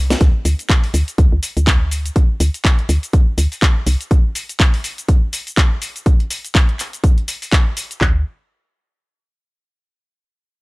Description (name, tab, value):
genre	deep house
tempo	123 BPM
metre	4/4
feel	swing 58% on 16ths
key	unclear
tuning	A4 = 440 Hz
part	woody FM bass	bass	0.0-4.0, 8.0-8.2 s	C2 to D2	-16 LUFS	equal	tube saturation, sidechain pumping
part	house drum kit	drums	0.1-8.0 s	handclaps, hi-hat, shaker, snare drum	-21 LUFS	equal	none
part	house drum kit	drums	0.2-8.1 s	handclaps, kick drum	-13 LUFS	equal	none
room	little or no reverb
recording	dry, gritty hardware recording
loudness	-14 LUFS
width	side -24 dB against mid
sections	0.2-8.0 A section; 8.0-10.0 B section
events	drum fill 0.0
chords	none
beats	| 0.21 0.69 1.18 1.67 | 2.16 2.65 3.13 3.62 | 4.11 4.60 5.08 5.57 | 6.06 6.55 7.04 7.52 | 8.01